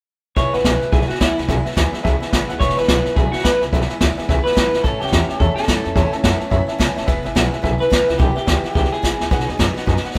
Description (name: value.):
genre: rockabilly.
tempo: 215 BPM.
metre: 4/4.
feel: swing 60% on 8ths.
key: E major.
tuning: A4 = 440 Hz.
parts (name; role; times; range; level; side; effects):
electric guitar through a small old amp; melody; 0.4-9.7 s; E4 to C#5; -23 LUFS; equal; none.
bright upright piano; accompaniment; 0.4-10.2 s; B4 to B5; -29 LUFS; equal; none.
picked steel-string acoustic guitar; accompaniment; 0.4-10.2 s; E2 to F#4; -30 LUFS; equal; none.
upright bass; bass; 0.4-10.2 s; E1 to F#2; -24 LUFS; equal; none.
vintage brush drum kit; drums; 0.4-10.2 s; hi-hat, kick drum, snare drum; -21 LUFS; equal; none.
room: moderate stone room reverb, RT60 1.2 s.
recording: band playing live in one room.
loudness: -18 LUFS.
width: mono.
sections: 0.4-10.2 A section.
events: none.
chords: 0.4 E; 4.8 A; 7.1 E; 9.3 B.